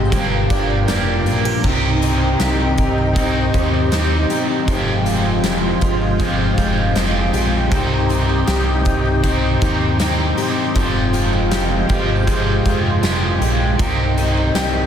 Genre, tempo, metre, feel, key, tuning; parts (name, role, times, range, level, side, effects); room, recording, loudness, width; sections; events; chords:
dream pop; 79 BPM; 4/4; straight; C minor; A4 = 440 Hz
crunchy overdriven guitar; accompaniment; 0.0-14.9 s; F2 to G4; -22 LUFS; right 1 dB; harmonic tremolo, lush chorus, plate reverb
phased analog pad; sustained chords; 0.0-14.9 s; Ab3 to G5; -23 LUFS; right 1 dB; phaser, chorus, plate reverb
picked plugged-in twelve-string acoustic guitar; arpeggios; 0.0-14.9 s; F2 to G4; -23 LUFS; left 5 dB; analog chorus, ping-pong delay, plate reverb
chorused synth bass; bass; 0.0-14.9 s; F1 to Eb2; -21 LUFS; equal
oversized low-tuned drum kit; drums; 0.1-14.7 s; crash cymbal, hi-hat, kick drum, snare drum, tambourine; -20 LUFS; equal
moderate studio ambience, RT60 0.5 s; dense, heavily limited modern master; -15 LUFS; side -8 dB against mid
0.0-1.6 A section; 1.6-14.9 A section
0.1 Gm7; 1.6 Cm; 4.7 Fmadd9; 7.7 Cm; 10.8 Fmadd9; 13.8 Cm